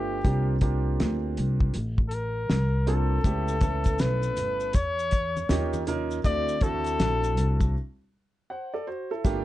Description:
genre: hip hop, jazz-hop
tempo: 80 BPM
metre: 4/4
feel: swing 62% on 16ths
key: unclear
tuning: A4 = 445 Hz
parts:
  - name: trumpet with bucket mute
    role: melody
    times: 0.0-7.8 s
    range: G4 to D5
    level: -29 LUFS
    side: left 3 dB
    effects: none
  - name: clear upright piano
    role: accompaniment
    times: 0.0-9.4 s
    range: A3 to F#5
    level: -31 LUFS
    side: right 4 dB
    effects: none
  - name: upright bass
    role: bass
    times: 0.0-9.4 s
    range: G1 to E2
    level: -27 LUFS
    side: equal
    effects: none
  - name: cloth-damped thuddy drum kit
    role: drums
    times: 0.2-9.4 s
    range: hi-hat, kick drum, snare drum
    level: -26 LUFS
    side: equal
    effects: vintage 12-bit sampler grit
  - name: maracas and congas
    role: percussion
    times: 3.2-9.4 s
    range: none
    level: -39 LUFS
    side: left 3 dB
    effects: none
room: light reverb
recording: dark, warm production, nothing above 10.5 kHz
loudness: -24 LUFS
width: side -15 dB against mid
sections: 0.0-9.2 A section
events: break 7.7-9.2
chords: 0.2 C9sus4; 3.2 A9; 5.5 Eb9; 6.2 D7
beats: | 0.25 1.00 1.75 2.50 | 3.25 4.00 4.75 5.50 | 6.25 7.00 7.75 8.50 | 9.25

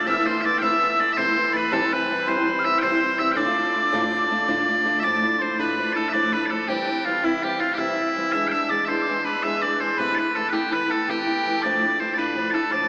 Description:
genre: celtic folk, Celtic slip jig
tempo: 109 BPM (dotted quarters)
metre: 9/8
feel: straight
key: D dorian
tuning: A4 = 440 Hz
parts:
  - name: loud bright bagpipes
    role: melody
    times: 0.0-12.9 s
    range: E4 to G5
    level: -25 LUFS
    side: equal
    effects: none
  - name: breathy mid whistle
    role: second line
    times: 0.0-12.9 s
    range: E5 to F6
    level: -30 LUFS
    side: equal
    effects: none
  - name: picked old ladder-braced acoustic guitar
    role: accompaniment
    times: 0.0-12.9 s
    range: D2 to F4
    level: -28 LUFS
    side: equal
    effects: none
room: wet cathedral reverb, RT60 4.4 s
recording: recorded in a church or concert hall, small speaker sound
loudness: -22 LUFS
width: mono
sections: 0.0-5.0 A section; 5.0-12.9 B section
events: none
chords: 0.1 Amadd9/C; 1.7 C; 3.4 Dm; 5.0 Dmadd9; 6.7 C; 8.3 E7; 10.0 Amadd9/C; 11.6 Dmadd9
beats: | 0.07 0.62 1.17 | 1.72 2.27 2.82 | 3.37 3.92 4.48 | 5.03 5.58 6.13 | 6.68 7.23 7.78 | 8.34 8.88 9.44 | 9.98 10.53 11.08 | 11.63 12.18 12.72

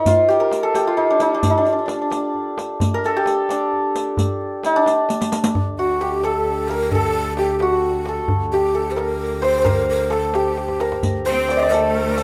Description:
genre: Persian modal ensemble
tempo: 88 BPM (dotted quarters)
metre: 6/8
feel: straight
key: D dastgah shur, D dastgah homayun from 5.5 s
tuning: A4 = 439 Hz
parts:
  - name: santur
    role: melody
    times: 0.0-12.2 s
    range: Bb3 to Eb5+45c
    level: -21 LUFS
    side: equal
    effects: none
  - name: riq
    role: percussion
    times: 0.1-5.5, 11.0-12.2 s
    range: none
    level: -28 LUFS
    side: equal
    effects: none
  - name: tombak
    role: percussion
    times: 0.1-12.2 s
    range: none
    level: -26 LUFS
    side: equal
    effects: none
  - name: clear double bass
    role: drone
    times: 5.6-12.2 s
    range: D2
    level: -31 LUFS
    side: equal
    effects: none
  - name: breathy mellow ney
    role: second line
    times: 5.8-12.2 s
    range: F#4 to D5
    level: -26 LUFS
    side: equal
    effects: none
  - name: bright studio cello section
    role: second line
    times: 11.3-12.2 s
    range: A3 to C4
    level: -27 LUFS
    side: equal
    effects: none
room: light reverb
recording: none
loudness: -19 LUFS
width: mono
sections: 0.0-5.5 A section; 5.5-12.2 B section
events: drum fill 5.1-5.5, 10.6-11.0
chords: none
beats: | 0.06 0.75 | 1.44 2.12 | 2.81 3.49 | 4.18 4.86 | 5.55 6.24 | 6.92 7.61 | 8.29 8.98 | 9.66 10.35 | 11.03 11.72

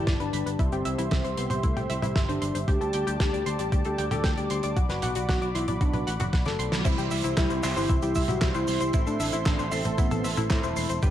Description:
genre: italo disco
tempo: 115 BPM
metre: 4/4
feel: straight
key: unclear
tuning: A4 = 440 Hz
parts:
  - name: soft octave-layered synth lead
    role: melody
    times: 0.0-11.1 s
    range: A3 to A4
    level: -31 LUFS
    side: left 1 dB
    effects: chorus, digital delay
  - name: warm analog pad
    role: sustained chords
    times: 0.0-11.1 s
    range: F#4 to D6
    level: -34 LUFS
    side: right 1 dB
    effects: chorus
  - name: analog pluck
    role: arpeggios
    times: 0.0-11.1 s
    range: E4 to C6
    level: -33 LUFS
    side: left 2 dB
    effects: chorus, tape echo
  - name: picked electric bass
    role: bass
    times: 0.0-11.1 s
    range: E1 to A2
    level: -31 LUFS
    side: equal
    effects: tube saturation
  - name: damped 70s drum kit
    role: drums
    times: 0.1-11.1 s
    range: cabasa, crash cymbal, handclaps, hi-hat, snare drum, toms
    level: -31 LUFS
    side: right 2 dB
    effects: small room ambience
  - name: electronic kick drum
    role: drums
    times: 0.1-11.1 s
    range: none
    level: -25 LUFS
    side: equal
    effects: overdrive, small room ambience
  - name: direct-recorded clean electric guitar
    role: stabs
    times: 6.8-11.1 s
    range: G3 to E5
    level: -36 LUFS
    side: right 2 dB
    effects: none
room: light reverb, studio reverb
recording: dark, warm production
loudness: -24 LUFS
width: side -11 dB against mid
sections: 0.0-6.9 A section; 6.9-11.1 B section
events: drum fill 6.3-6.9; band accent 6.7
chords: 0.0 Gadd9; 0.6 C; 2.7 Dsus4; 4.8 Bm; 6.9 C; 8.9 Am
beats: 0.07 | 0.59 1.11 1.64 2.16 | 2.68 3.20 3.72 4.24 | 4.77 5.29 5.81 6.33 | 6.85 7.37 7.90 8.42 | 8.94 9.46 9.98 10.51 | 11.03

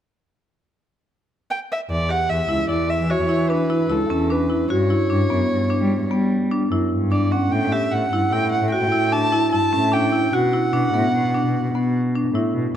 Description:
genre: contemporary instrumental, chamber music in an uneven meter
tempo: 149 BPM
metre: 7/4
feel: straight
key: E dorian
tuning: A4 = 440 Hz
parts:
  - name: dark violin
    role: melody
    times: 1.5-11.9 s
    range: A4 to A5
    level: -23 LUFS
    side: right 1 dB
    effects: none
  - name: muted cello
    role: bass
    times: 1.9-12.8 s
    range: C#2 to G3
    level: -23 LUFS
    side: equal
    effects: none
  - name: marimba with hard mallets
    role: arpeggios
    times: 2.1-12.7 s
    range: B3 to G4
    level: -21 LUFS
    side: equal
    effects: none
room: moderate recital hall reverb, RT60 1.4 s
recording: none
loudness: -18 LUFS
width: side -10 dB against mid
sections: 0.0-1.9 A section; 1.9-12.8 B section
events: none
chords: 0.0 N.C.; 1.9 E5; 4.7 Gmaj7; 7.5 A7(no3); 10.3 Bm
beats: 0.29 0.69 1.09 1.49 | 1.90 2.29 2.70 3.10 3.50 3.90 4.30 | 4.70 5.10 5.51 5.91 6.31 6.71 7.11 | 7.51 7.92 8.32 8.72 9.12 9.53 9.93 | 10.33 10.73 11.13 11.54 11.94 12.34 12.74

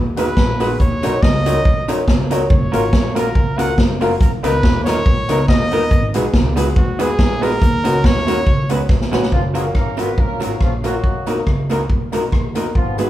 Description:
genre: ska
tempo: 141 BPM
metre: 4/4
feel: swing 55% on 8ths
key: F# major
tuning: A4 = 438 Hz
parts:
  - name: upright bass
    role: bass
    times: 0.0-13.1 s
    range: F#1 to D#2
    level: -23 LUFS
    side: equal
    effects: none
  - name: clear trumpet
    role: melody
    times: 0.2-8.7 s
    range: F#4 to F#5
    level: -22 LUFS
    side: right 1 dB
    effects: none
  - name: electric guitar through a small old amp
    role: accompaniment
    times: 0.2-13.1 s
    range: F#3 to B4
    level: -22 LUFS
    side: right 1 dB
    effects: spring reverb, analog delay
  - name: bright upright piano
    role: stabs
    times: 0.2-13.1 s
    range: A#3 to C#5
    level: -24 LUFS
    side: left 2 dB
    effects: none
  - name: swinging big-band drum kit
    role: drums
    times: 0.2-13.1 s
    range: hi-hat, kick drum, rim click, snare drum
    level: -17 LUFS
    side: equal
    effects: none
  - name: tambourine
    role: percussion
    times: 0.2-13.1 s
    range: none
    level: -44 LUFS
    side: left 6 dB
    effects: none
  - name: mellow horn section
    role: melody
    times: 9.3-13.1 s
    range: E#3 to B4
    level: -25 LUFS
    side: left 1 dB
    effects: none
room: moderate large studio reverb, RT60 1.0 s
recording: band playing live in one room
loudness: -14 LUFS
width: side -13 dB against mid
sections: 0.0-9.3 A section; 9.3-13.1 B section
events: trumpet solo 0.0-9.3; drum fill 8.9-9.3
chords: 0.0 G#m7; 0.8 D#m7; 2.5 F#maj7; 4.2 Bmaj7; 5.9 G#m7; 7.6 D#m7; 8.5 C#7sus4; 9.3 F#maj7; 11.0 Bmaj7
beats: 0.37 | 0.80 1.23 1.65 2.08 | 2.51 2.93 3.36 3.78 | 4.21 4.64 5.06 5.49 | 5.91 6.34 6.76 7.19 | 7.62 8.04 8.47 8.89 | 9.32 9.75 10.18 10.61 | 11.03 11.46 11.89 12.32 | 12.75

